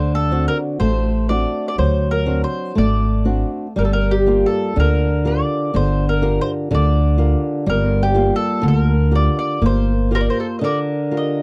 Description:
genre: fado-style ballad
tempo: 61 BPM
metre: 2/4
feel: rubato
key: G minor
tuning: A4 = 439 Hz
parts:
  - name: mandolin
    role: melody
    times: 0.0-11.4 s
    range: G4 to Eb5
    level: -24 LUFS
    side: equal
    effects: none
  - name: flamenco guitar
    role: accompaniment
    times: 0.0-11.4 s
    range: D3 to Bb4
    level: -23 LUFS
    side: equal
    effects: none
  - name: upright bass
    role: bass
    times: 0.0-10.3 s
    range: G1 to D2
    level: -20 LUFS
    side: equal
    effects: none
room: little or no reverb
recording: dry, close 1970s-style studio recording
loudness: -18 LUFS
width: mono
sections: 0.0-11.4 A section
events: none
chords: 0.0 D7; 3.8 Gm7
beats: 0.80 | 1.78 2.77 | 3.77 4.77 | 5.74 6.70 | 7.67 8.63 | 9.62 10.62

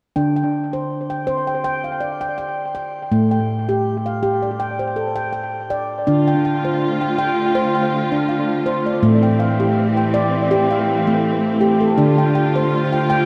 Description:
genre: world meditative, meditative tuned percussion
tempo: 81 BPM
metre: 4/4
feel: swing 54% on 16ths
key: D minor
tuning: A4 = 440 Hz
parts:
  - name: handpan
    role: arpeggios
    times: 0.2-13.3 s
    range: A2 to G5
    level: -20 LUFS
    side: equal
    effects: analog delay, shimmer reverb
  - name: rich studio string section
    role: sustained chords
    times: 6.1-13.3 s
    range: D3 to F4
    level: -23 LUFS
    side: equal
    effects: shimmer reverb
room: wet plate reverb, RT60 2.8 s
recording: echo-heavy mix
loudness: -19 LUFS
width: mono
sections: 0.2-6.1 A section; 6.1-13.3 B section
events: none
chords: 0.2 Dm; 3.1 Am; 6.1 Dm; 9.0 Am; 12.0 Dm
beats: | 0.17 0.91 1.64 2.38 | 3.12 3.86 4.60 5.33 | 6.07 6.81 7.55 8.29 | 9.03 9.77 10.50 11.24 | 11.98 12.72

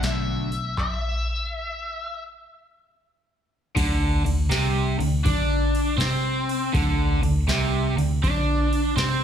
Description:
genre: blues rock power trio and southern rock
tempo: 80 BPM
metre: 4/4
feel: swing 66% on 8ths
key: unclear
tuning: A4 = 440 Hz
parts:
  - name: octave-fuzz lead guitar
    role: melody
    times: 0.0-2.2 s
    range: E5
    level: -30 LUFS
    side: left 3 dB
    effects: wah, distortion, slapback echo
  - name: crunchy overdriven guitar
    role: riff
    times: 0.0-9.2 s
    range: C3 to D4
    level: -24 LUFS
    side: right 1 dB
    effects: none
  - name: vintage muted fingered electric bass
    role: bass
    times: 0.0-9.2 s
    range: B1 to D3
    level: -25 LUFS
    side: equal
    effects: none
  - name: booming analog drum machine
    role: drums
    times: 0.0-9.2 s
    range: crash cymbal, handclaps, hi-hat, kick drum, snare drum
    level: -26 LUFS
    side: equal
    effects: none
room: digital ambience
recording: live gig heard through the venue's PA, club ambience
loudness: -21 LUFS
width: side -9 dB against mid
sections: 0.0-3.8 A section; 3.8-9.2 B section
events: stop 0.8-3.8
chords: 0.4 Bsus4; 3.8 Csus2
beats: 0.02 | 0.77 1.52 2.26 3.01 | 3.75 4.50 5.24 5.99 | 6.73 7.48 8.23 8.97

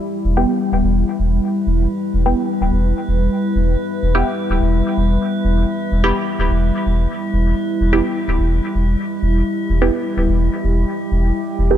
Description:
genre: dub techno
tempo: 127 BPM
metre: 4/4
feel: straight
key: E minor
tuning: A4 = 441 Hz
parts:
  - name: deep dark ambient pad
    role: sustained chords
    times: 0.0-11.8 s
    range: G3 to B4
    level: -21 LUFS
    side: left 2 dB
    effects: chorus, built-in reverb
  - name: metallic inharmonic drone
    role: texture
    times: 0.9-11.8 s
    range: E4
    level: -27 LUFS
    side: right 2 dB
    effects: chorus, built-in reverb
  - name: warm sub bass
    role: bass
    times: 0.2-11.8 s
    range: D1 to E1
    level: -16 LUFS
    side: equal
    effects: none
  - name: filtered dub chord stab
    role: stabs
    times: 0.4-11.8 s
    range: B3 to G4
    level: -22 LUFS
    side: right 2 dB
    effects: phaser, dub echo
room: light reverb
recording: dark, warm production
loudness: -16 LUFS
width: side -10 dB against mid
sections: 0.0-11.8 A section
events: none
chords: 0.0 Em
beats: | 0.01 0.49 0.96 1.43 | 1.90 2.38 2.85 3.32 | 3.79 4.27 4.74 5.21 | 5.68 6.16 6.63 7.10 | 7.57 8.05 8.52 8.99 | 9.46 9.94 10.41 10.88 | 11.35

